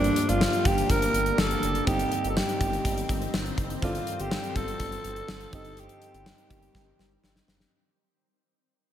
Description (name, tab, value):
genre	1980s-style pop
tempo	123 BPM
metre	4/4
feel	straight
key	unclear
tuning	A4 = 440 Hz
part	raspy alto saxophone	melody	0.0-7.5 s	D4 to Bb4	-29 LUFS	equal	slapback echo
part	FM electric piano	accompaniment	0.0-7.7 s	G2 to Eb5	-33 LUFS	right 2 dB	chorus, slapback echo
part	shimmering ambient pad	sustained chords	0.0-7.7 s	D3 to C4	-35 LUFS	equal	chorus, built-in reverb
part	smooth gliding synth bass	bass	0.0-7.7 s	F#1 to G1	-32 LUFS	equal	none
part	gated 80s drum kit	drums	0.0-7.7 s	hi-hat, kick drum, snare drum	-29 LUFS	left 1 dB	none
room	moderate lush hall reverb, RT60 2.2 s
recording	big arena sound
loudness	-24 LUFS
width	side -10 dB against mid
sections	0.0-7.7 A section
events	fade-out 0.0-7.7; drum fill 6.7-7.7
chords	0.0 Gm; 1.9 Cm/G; 3.8 Dm7/G; 5.5 Cm/G